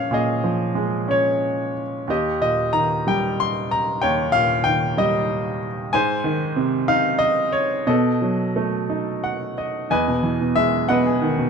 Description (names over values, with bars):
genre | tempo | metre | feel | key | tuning
classical, lyrical solo piano | 62 BPM (dotted quarters) | 6/8 | rubato | unclear | A4 = 440 Hz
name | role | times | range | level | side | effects
bright baby grand piano | solo | 0.0-11.5 s | Eb2 to C6 | -19 LUFS | equal | none
room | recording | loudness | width
light reverb | dark, warm production | -19 LUFS | side -6 dB against mid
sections
0.0-9.9 A section; 9.9-11.5 B section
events
grand piano fill 8.9-9.9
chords
0.0 Bbm7; 2.1 Eb7; 5.9 Ab; 7.9 B7; 9.9 Emaj7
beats
| 0.13 1.10 | 2.09 3.07 | 4.03 4.99 | 5.94 6.90 | 7.88 8.90 | 9.91 10.89